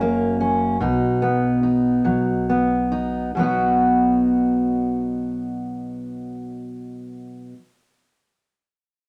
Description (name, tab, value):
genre	acoustic folk duo or small band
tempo	45-50 BPM (dotted quarters)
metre	6/8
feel	straight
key	B major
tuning	A4 = 439 Hz
part	fingerpicked steel-string acoustic guitar	accompaniment	0.0-7.6 s	F#2 to F#4	-22 LUFS	equal	none
part	upright bass	bass	0.0-7.5 s	F#1 to B1	-34 LUFS	equal	none
room	moderate studio reverb, RT60 0.7 s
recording	none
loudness	-20 LUFS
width	mono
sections	0.0-3.3 A section; 3.3-6.0 B section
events	slowing down 0.0-3.3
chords	0.0 F#; 0.8 B